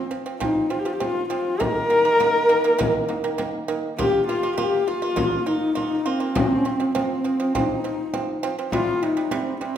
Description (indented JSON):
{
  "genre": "mongolian traditional, Mongolian folk",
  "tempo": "101 BPM",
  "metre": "4/4",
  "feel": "straight",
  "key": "Bb zhi mode",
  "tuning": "A4 = 445 Hz",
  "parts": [
    { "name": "dark horsehead fiddle", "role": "melody", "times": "0.0-9.8 s", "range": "C4 to Bb4", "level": "-23 LUFS", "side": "left 3 dB", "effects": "none" },
    { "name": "mellow low xiao", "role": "second line", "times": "0.0-9.8 s", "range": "C4 to Bb4", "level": "-25 LUFS", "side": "right 1 dB", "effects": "none" },
    { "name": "pipa", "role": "arpeggios", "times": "0.0-9.7 s", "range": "C3 to F4", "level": "-28 LUFS", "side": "right 5 dB", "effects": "none" },
    { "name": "frame drum", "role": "percussion", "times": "0.1-9.7 s", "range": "none", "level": "-29 LUFS", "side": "left 2 dB", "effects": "none" }
  ],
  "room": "wet recital hall reverb, RT60 1.3 s",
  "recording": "minimal, uncompressed stereo recording",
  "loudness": "-20 LUFS",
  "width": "side -10 dB against mid",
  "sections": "0.0-4.0 A section; 4.0-9.8 B section",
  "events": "none",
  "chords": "0.0 F5; 1.6 Eb5; 4.0 Bb5; 6.4 F5; 8.7 C5",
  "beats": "0.41 1.01 | 1.61 2.20 2.80 3.40 | 3.99 4.58 5.18 5.77 | 6.36 6.95 7.54 8.14 | 8.73 9.32"
}